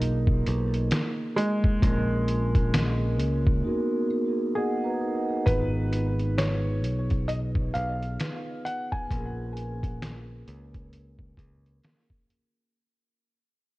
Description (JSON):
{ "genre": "lo-fi hip hop", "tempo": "66 BPM", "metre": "4/4", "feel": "swing 60% on 16ths", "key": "G# dorian", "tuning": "A4 = 440 Hz", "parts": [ { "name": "felt-muted upright piano", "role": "melody", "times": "0.0-11.8 s", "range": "G#3 to G#5", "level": "-32 LUFS", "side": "equal", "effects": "low-pass filter, tape echo" }, { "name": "vibraphone with soft mallets", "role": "accompaniment", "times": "0.0-12.8 s", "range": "A#3 to A#5", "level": "-30 LUFS", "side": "right 1 dB", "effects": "low-pass filter, tape echo" }, { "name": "modern bright picked electric bass", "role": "bass", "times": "0.0-11.8 s", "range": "G#1 to C#2", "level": "-28 LUFS", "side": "equal", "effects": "none" }, { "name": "trip hop sampler-style drum kit", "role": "drums", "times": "0.0-12.5 s", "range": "finger snaps, hi-hat, kick drum, snare drum", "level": "-27 LUFS", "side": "equal", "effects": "vintage 12-bit sampler grit" } ], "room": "light reverb", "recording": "echo-heavy mix, cassette tape", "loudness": "-24 LUFS", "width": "side -19 dB against mid", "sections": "0.0-5.5 A section; 5.5-12.7 B section", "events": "break 3.6-5.5; vibraphone fill 4.1-5.5; fade-out 5.5-12.7", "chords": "0.0 G#m69; 1.8 A#m7; 3.6 G#m9; 5.5 G#m6; 9.1 A#m7" }